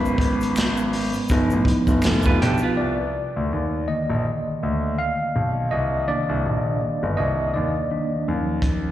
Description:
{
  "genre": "R&B, neo-soul",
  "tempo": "82 BPM",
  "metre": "4/4",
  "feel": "swing 56% on 16ths",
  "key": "unclear",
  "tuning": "A4 = 440 Hz",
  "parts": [
    { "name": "tine electric piano", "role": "accompaniment", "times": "0.0-8.9 s", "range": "D3 to B5", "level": "-24 LUFS", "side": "equal", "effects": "medium stereo tremolo, slapback echo" },
    { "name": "clear concert grand piano", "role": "bass", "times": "0.0-8.9 s", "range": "F1 to Eb2", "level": "-24 LUFS", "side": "equal", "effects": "none" },
    { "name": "egg shaker and finger snaps", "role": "percussion", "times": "0.1-2.7 s", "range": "none", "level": "-39 LUFS", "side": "equal", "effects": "none" },
    { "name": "crunchy breakbeat drum kit", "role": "drums", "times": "0.2-2.6, 8.6-8.8 s", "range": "hi-hat, kick drum, snare drum", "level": "-23 LUFS", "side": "equal", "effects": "none" },
    { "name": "vintage hollow-body jazz guitar", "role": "second line", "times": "2.3-3.0 s", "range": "B3 to B4", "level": "-25 LUFS", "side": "right 3 dB", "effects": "slapback echo" }
  ],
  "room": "light reverb, small room ambience",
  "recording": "live gig heard through the venue's PA, recital hall reverb",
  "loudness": "-20 LUFS",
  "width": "side -12 dB against mid",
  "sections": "0.0-2.8 A section; 2.8-8.9 B section",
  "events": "tine electric piano solo 0.0-2.8, 2.8-8.9",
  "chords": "0.0 Abm7; 1.3 G7b13; 2.8 Cm9; 8.3 Ebm9"
}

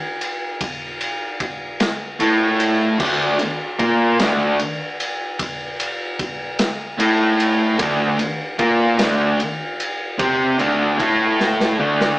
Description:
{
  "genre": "quiet-loud alternative rock",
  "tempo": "50 BPM (dotted quarters)",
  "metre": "6/8",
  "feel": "straight",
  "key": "D minor",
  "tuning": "A4 = 440 Hz",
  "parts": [
    { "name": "raw garage drum kit", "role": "drums", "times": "0.2-12.2 s", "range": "crash cymbal, kick drum, ride cymbal, snare drum", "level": "-23 LUFS", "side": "equal", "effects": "none" },
    { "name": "distorted electric guitar", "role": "riff", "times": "2.2-12.2 s", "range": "D3 to C5", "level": "-22 LUFS", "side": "right 2 dB", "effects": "distortion" },
    { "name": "thick fuzz guitar", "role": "riff", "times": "2.2-12.2 s", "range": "D3 to C5", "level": "-22 LUFS", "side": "left 2 dB", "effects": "distortion" },
    { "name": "fuzz picked electric bass", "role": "bass", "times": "2.2-12.2 s", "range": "D2 to C3", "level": "-19 LUFS", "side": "equal", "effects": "overdrive" }
  ],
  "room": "moderate stone room reverb, RT60 1.0 s",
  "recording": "rough rehearsal-room recording, small speaker sound",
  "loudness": "-17 LUFS",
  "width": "side -19 dB against mid",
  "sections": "0.0-12.2 A section",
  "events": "drum fill 11.4-12.2",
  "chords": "0.0 N.C.; 2.2 A5; 3.0 Dm; 7.0 A5; 7.8 Dm; 11.0 A5"
}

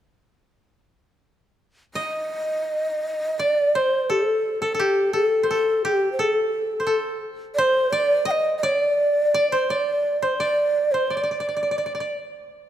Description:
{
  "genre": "japanese traditional, Japanese chamber music",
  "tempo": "84 BPM",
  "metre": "4/4",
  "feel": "rubato",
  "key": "D in sen",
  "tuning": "A4 = 440 Hz",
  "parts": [
    { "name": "breathy mellow long shakuhachi", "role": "melody", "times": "1.9-12.2 s", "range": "G4 to G5", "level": "-21 LUFS", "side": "equal", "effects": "none" },
    { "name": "koto", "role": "second line", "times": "2.0-12.7 s", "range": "G4 to Eb5", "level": "-26 LUFS", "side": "left 1 dB", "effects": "none" }
  ],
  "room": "moderate concert hall reverb, RT60 2.5 s",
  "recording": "close, detailed microphones",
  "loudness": "-20 LUFS",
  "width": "side -10 dB against mid",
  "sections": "2.0-12.7 A section",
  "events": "none",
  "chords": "none"
}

